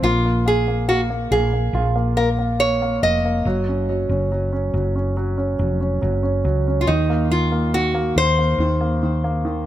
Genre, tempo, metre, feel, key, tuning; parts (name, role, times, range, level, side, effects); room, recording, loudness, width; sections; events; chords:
pop ballad; 70 BPM; 4/4; straight; Bb minor; A4 = 440 Hz
nylon-string guitar; melody; 0.0-9.7 s; Eb4 to Eb5; -21 LUFS; equal
clear grand piano; accompaniment; 0.0-9.7 s; Eb3 to F4; -22 LUFS; right 1 dB
woody fretless electric bass; bass; 0.0-9.7 s; F1 to Eb2; -22 LUFS; equal
light reverb, small room ambience; -17 LUFS; side -12 dB against mid
0.0-9.7 A section
0.0 Bb5; 3.5 Gb5; 6.9 Eb5